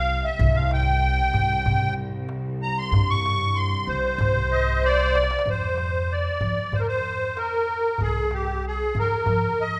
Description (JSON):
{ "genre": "Arabic maqam ensemble", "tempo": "95 BPM", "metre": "4/4", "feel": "straight", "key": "C maqam hijaz, F maqam rast from 5.5 s", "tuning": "A4 = 436 Hz", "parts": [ { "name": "musette accordion", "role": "melody", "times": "0.0-9.8 s", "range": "G4 to Db6+25c", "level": "-26 LUFS", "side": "equal", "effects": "none" }, { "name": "upright bass", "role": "bass", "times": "0.0-9.8 s", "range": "C2 to F3", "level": "-29 LUFS", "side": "equal", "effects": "none" }, { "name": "rich studio cello section", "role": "drone", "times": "0.0-5.5 s", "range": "C2", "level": "-36 LUFS", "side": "equal", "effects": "none" }, { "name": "darbuka", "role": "percussion", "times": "0.1-9.8 s", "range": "none", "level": "-30 LUFS", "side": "equal", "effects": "none" } ], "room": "wet recital hall reverb, RT60 1.8 s", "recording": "none", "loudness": "-23 LUFS", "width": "mono", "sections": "0.0-5.5 A section; 5.5-9.8 B section", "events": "drum fill 4.8-5.5", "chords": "none" }